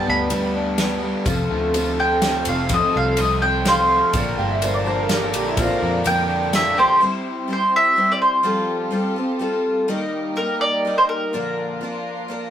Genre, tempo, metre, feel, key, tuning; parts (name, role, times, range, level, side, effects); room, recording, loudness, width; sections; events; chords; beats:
folk rock and heartland rock; 126 BPM; 3/4; straight; A4 = 439 Hz
mandolin; melody; 0.0-12.0 s; G4 to B5; -18 LUFS; equal
picked twelve-string acoustic guitar; accompaniment; 0.0-12.5 s; G2 to C5; -24 LUFS; left 2 dB
crunchy overdriven guitar; riff; 0.0-7.0 s; F2 to D4; -26 LUFS; equal
vintage muted picked electric bass; bass; 0.1-6.9 s; F1 to Bb2; -26 LUFS; equal
natural country drum kit; drums; 0.3-6.6 s; kick drum, ride cymbal, snare drum; -26 LUFS; equal
warm chamber string section; sustained chords; 1.3-12.5 s; Bb3 to D5; -30 LUFS; right 2 dB
tambourine; percussion; 1.3-6.6 s; -39 LUFS; right 3 dB
bright upright piano; second line; 4.4-5.9 s; C4 to G5; -24 LUFS; right 1 dB; slapback echo
wet small room reverb, RT60 0.5 s; rough rehearsal-room recording; -17 LUFS; side -10 dB against mid
0.0-7.0 A section; 7.0-12.5 B section
mandolin solo 0.0-7.0
0.0 G; 1.3 F; 4.1 Bb; 7.0 C; 8.4 Fadd9; 9.9 Eb; 11.3 Bb
0.33 0.80 | 1.28 1.76 2.23 | 2.71 3.19 3.67 | 4.14 4.62 5.10 | 5.58 6.05 6.53 | 7.01 7.49 7.97 | 8.45 8.93 9.40 | 9.88 10.36 10.84 | 11.32 11.80 12.28